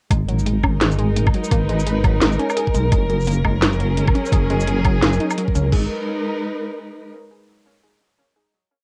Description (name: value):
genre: half-time drum and bass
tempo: 171 BPM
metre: 4/4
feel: swing 60% on 16ths, half-time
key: G# minor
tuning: A4 = 441 Hz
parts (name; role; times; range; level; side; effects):
- rich chamber string section; sustained chords; 0.1-7.1 s; F#3 to B4; -26 LUFS; equal; sidechain pumping, cassette tape
- warbly dusty pluck; arpeggios; 0.1-5.9 s; F#3 to G#4; -29 LUFS; equal; chorus, cassette tape, tape echo
- deep soft wobble bass; bass; 0.1-5.9 s; F#1 to C#2; -22 LUFS; equal; chorus
- drum and bass drum kit; drums; 0.1-5.8 s; crash cymbal, hi-hat, shaker, snare drum, woodblock; -24 LUFS; equal; cassette tape
- electronic kick drum; drums; 0.1-5.8 s; none; -21 LUFS; equal; cassette tape
room: light reverb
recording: home recording on cassette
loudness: -19 LUFS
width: mono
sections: 0.1-5.7 drop; 5.7-7.1 final chord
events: drop 0.1-5.7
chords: 0.1 G#m; 2.9 F#; 5.7 G#m